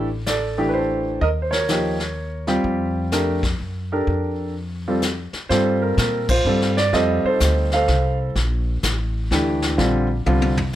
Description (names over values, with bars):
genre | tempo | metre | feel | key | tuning
jazz piano trio | 126 BPM | 3/4 | swing 65% on 8ths | F major | A4 = 440 Hz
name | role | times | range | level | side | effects
warm baby grand piano | melody | 0.0-10.5 s | D3 to F5 | -20 LUFS | right 1 dB | none
upright bass | bass | 0.0-10.7 s | A1 to Bb2 | -23 LUFS | equal | none
vintage brush drum kit | drums | 0.3-10.8 s | brushed snare drum, hi-hat, kick drum, ride cymbal, snare drum, toms | -25 LUFS | left 2 dB | none
room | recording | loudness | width
light reverb | none | -18 LUFS | side -13 dB against mid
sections
0.0-5.5 A section; 5.5-10.8 B section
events
band accent 6.2; drum fill 10.3-10.7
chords
0.0 Am7; 1.2 Eb9; 2.6 F; 5.5 Gm7; 6.9 F7; 8.4 Bbmaj7; 9.8 Bb